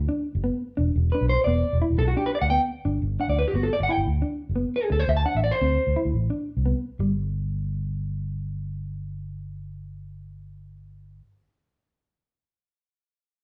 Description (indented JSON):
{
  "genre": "highlife guitar band",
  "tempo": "116 BPM (dotted quarters)",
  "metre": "12/8",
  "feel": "straight",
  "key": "G major",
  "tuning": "A4 = 439 Hz",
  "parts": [
    { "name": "fingered electric bass", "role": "bass", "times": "0.0-11.2 s", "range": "E1 to D2", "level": "-28 LUFS", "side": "equal", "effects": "none" },
    { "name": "mellow electric guitar", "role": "accompaniment", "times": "0.1-7.1 s", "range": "G3 to E4", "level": "-31 LUFS", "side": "equal", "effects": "none" },
    { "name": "electric guitar at the edge of break-up", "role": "melody", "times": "1.1-6.0 s", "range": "F#4 to A5", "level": "-27 LUFS", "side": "equal", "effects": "none" }
  ],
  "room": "moderate large studio reverb, RT60 0.9 s",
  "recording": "band playing live in one room",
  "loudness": "-25 LUFS",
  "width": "mono",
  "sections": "0.0-7.0 A section; 7.0-11.1 B section",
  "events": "clean electric guitar solo 0.0-7.0",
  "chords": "0.0 Gmaj7 (rootless); 0.8 E5; 2.8 G; 4.9 D5; 7.0 N.C."
}